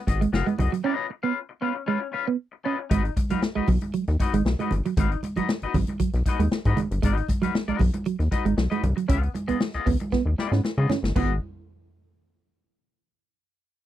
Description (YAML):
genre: funk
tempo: 116 BPM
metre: 4/4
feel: straight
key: G# dorian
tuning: A4 = 439 Hz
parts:
  - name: clean electric guitar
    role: accompaniment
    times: 0.1-11.3 s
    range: B3 to E#5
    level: -30 LUFS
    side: left 7 dB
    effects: none
  - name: clean electric guitar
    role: riff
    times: 0.1-11.3 s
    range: F#3 to C#4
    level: -26 LUFS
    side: right 7 dB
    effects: wide subtle chorus
  - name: rubbery square bass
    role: bass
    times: 0.1-11.4 s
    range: F#1 to C#3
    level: -24 LUFS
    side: left 1 dB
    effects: none
  - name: swinging big-band drum kit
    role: drums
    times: 0.1-11.3 s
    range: crash cymbal, hi-hat, kick drum, snare drum, toms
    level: -27 LUFS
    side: left 1 dB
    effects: none
  - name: congas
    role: percussion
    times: 0.2-11.4 s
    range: none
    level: -32 LUFS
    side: right 2 dB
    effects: none
room: little or no reverb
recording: dry, close 1970s-style studio recording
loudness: -22 LUFS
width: side -12 dB against mid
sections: 0.0-2.9 A section; 2.9-11.2 B section; 11.2-13.2 C section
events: break 0.8-2.9; drum fill 10.1-11.2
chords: 0.0 G#m7; 0.8 C#9; 2.9 G#m7; 9.1 C#9; 11.2 G#m7